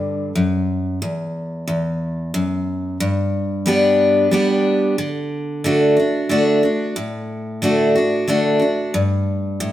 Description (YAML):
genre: country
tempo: 91 BPM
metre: 3/4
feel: straight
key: unclear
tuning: A4 = 440 Hz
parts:
  - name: picked steel-string acoustic guitar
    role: solo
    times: 0.0-9.7 s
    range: E2 to G4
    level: -17 LUFS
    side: equal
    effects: none
room: moderate stone room reverb, RT60 1.2 s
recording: band playing live in one room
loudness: -16 LUFS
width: side -13 dB against mid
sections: 0.0-9.7 A section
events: none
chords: 0.0 D; 1.0 Esus2; 3.0 G; 5.0 D; 9.0 N.C.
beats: 0.36 | 1.02 1.68 2.34 | 3.01 3.67 4.33 | 4.99 5.65 6.31 | 6.97 7.63 8.29 | 8.96 9.62